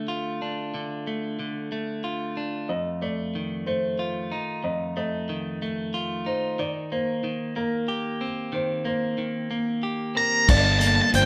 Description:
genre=post-rock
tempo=62 BPM (dotted quarters)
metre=6/8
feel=straight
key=unclear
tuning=A4 = 440 Hz
part: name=clean electric guitar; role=arpeggios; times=0.0-11.3 s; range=F2 to G4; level=-31 LUFS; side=equal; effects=none
part: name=felt-muted upright piano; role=arpeggios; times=2.7-11.3 s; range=Bb4 to Eb5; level=-32 LUFS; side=equal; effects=none
part: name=octave-fuzz lead guitar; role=melody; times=10.2-11.3 s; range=G5 to Bb5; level=-22 LUFS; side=equal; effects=distortion
part: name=fuzz fingered electric bass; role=bass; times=10.5-11.3 s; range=G1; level=-25 LUFS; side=equal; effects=overdrive
part: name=loose indie drum kit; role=drums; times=10.5-11.3 s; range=crash cymbal, hi-hat, kick drum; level=-25 LUFS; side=equal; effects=none
room=wet large studio reverb, RT60 0.9 s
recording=band playing live in one room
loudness=-27 LUFS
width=mono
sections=0.0-10.5 A section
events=none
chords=0.0 Dm; 2.7 F7; 6.6 Cm7/Eb; 10.5 Gm7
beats=| 0.75 1.72 | 2.70 3.67 | 4.64 5.62 | 6.59 7.57 | 8.54 9.51 | 10.49

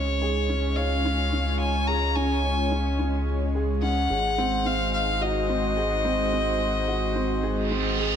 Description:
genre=electronica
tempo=108 BPM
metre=4/4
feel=straight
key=Db major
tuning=A4 = 441 Hz
part: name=warm violin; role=melody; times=0.0-8.0 s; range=Db5 to Bb5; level=-27 LUFS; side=left 2 dB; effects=none
part: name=lush unison pad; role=sustained chords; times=0.0-8.2 s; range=Ab3 to Db5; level=-30 LUFS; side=left 1 dB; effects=chorus
part: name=warm upright piano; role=riff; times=0.0-8.2 s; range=C4 to Db5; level=-29 LUFS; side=right 2 dB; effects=ping-pong delay
part: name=round analog bass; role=bass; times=0.0-8.2 s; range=Ab1 to Db2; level=-28 LUFS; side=equal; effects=none
part: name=reverse cymbal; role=sound effects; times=7.6-8.2 s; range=none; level=-27 LUFS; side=right 5 dB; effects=none
room=moderate concert hall reverb, RT60 1.8 s, studio ambience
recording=none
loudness=-22 LUFS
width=side -8 dB against mid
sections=0.0-8.2 A section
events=reverse cymbal 7.6-8.2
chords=0.0 Db; 4.1 Ab7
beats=0.21 0.77 1.32 | 1.88 2.44 2.99 3.55 | 4.10 4.66 5.21 5.77 | 6.33 6.88 7.44 7.99

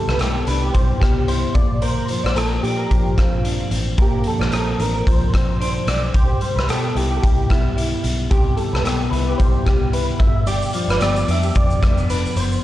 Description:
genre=indie pop, bedroom pop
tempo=111 BPM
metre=4/4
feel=swing 55% on 16ths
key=C major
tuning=A4 = 440 Hz
part: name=soft electric-piano-like synth keys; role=melody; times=0.0-12.6 s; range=E4 to E5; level=-26 LUFS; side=equal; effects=ensemble chorus, analog delay
part: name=electric guitar through a small old amp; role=accompaniment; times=0.0-12.6 s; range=G2 to E4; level=-25 LUFS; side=left 3 dB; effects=wide subtle chorus, warbly pitch drift
part: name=electric guitar through a small old amp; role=second line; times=0.1-11.8 s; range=G4 to D5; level=-30 LUFS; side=right 3 dB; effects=ensemble chorus, analog delay
part: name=vintage muted picked electric bass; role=bass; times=0.1-12.6 s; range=F1 to B2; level=-22 LUFS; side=equal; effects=transformer saturation
part: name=raw garage drum kit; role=drums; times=0.1-12.6 s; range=hi-hat, kick drum, rim click, shaker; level=-19 LUFS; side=equal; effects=vintage 12-bit sampler grit
room=light reverb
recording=none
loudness=-16 LUFS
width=side -14 dB against mid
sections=0.0-12.6 A section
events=none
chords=0.0 Cmaj7; 1.6 Bbadd9; 6.1 Cmaj7; 10.2 G7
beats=0.20 0.74 1.28 | 1.82 2.36 2.90 3.44 | 3.98 4.52 5.06 5.61 | 6.14 6.69 7.23 7.77 | 8.31 8.85 9.39 9.93 | 10.47 11.01 11.55 12.09 | 12.63

